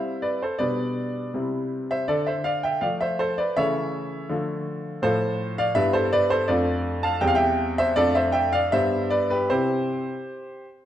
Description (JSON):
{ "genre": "classical-period piano sonatina", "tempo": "81 BPM", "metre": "2/4", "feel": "rubato", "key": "C major", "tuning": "A4 = 443 Hz", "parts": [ { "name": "clear grand piano", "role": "solo", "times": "0.0-10.7 s", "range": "E2 to A5", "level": "-22 LUFS", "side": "equal", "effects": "none" } ], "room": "moderate recital hall reverb, RT60 1.6 s", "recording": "dark, warm production", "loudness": "-21 LUFS", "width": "side -11 dB against mid", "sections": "0.0-10.9 A section", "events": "none", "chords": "0.0 C; 0.6 G/B; 1.3 C; 2.1 Dm; 3.6 A/C#; 4.3 Dm; 5.0 F/A; 5.8 Em/G; 6.5 Dm/F; 7.2 C/E; 8.0 Dm/F; 8.7 G; 9.5 C" }